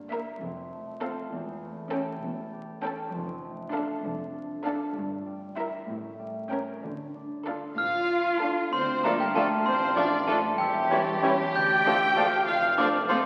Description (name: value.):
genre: cinematic, playful, whimsical film cue.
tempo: 65 BPM (dotted quarters).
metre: 6/8.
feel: straight.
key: D minor.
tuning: A4 = 439 Hz.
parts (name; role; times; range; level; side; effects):
concert harp; arpeggios; 0.0-13.3 s; E2 to D5; -40 LUFS; equal; none.
warm chamber cello section; bass; 0.0-13.3 s; E2 to G4; -35 LUFS; equal; none.
warm chamber double bass section; bass; 0.0-13.2 s; E1 to F2; -47 LUFS; equal; none.
warm symphonic violin section; melody; 0.1-13.2 s; G4 to G5; -33 LUFS; equal; none.
rich chamber violin section; second line; 0.1-13.2 s; E4 to Bb4; -38 LUFS; equal; none.
warm studio viola section; accompaniment; 0.1-13.2 s; F3 to E4; -38 LUFS; equal; none.
glockenspiel with hard plastic mallets; melody; 7.8-13.3 s; G5 to G6; -29 LUFS; equal; none.
warm oboe; second line; 8.7-13.3 s; C#5 to F5; -37 LUFS; equal; none.
warm tuba; bass; 8.7-13.2 s; E1 to D2; -40 LUFS; equal; none.
flute section; second line; 9.0-13.1 s; F5 to A5; -38 LUFS; equal; none.
warm clarinet; second line; 9.0-13.2 s; C5 to D5; -37 LUFS; equal; none.
clear bassoon; accompaniment; 9.0-13.2 s; E3 to A3; -36 LUFS; equal; none.
dark French horn section; sustained chords; 9.0-13.2 s; F3 to F4; -42 LUFS; equal; none.
room: wet scoring stage reverb, RT60 1.8 s.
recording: very old 78 rpm record, vinyl crackle.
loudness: -27 LUFS.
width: mono.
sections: 0.0-8.7 A section; 8.7-13.3 A section.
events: none.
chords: 0.4 F; 1.3 A7/E; 3.1 Dm/F; 5.0 Edim/G; 5.9 A7b9; 6.8 Dm; 10.6 C#dim/E; 11.5 Dm; 12.5 F.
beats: 0.42 | 1.32 2.23 | 3.13 4.04 | 4.95 5.88 | 6.83 7.78 | 8.73 9.66 | 10.59 11.54 | 12.47.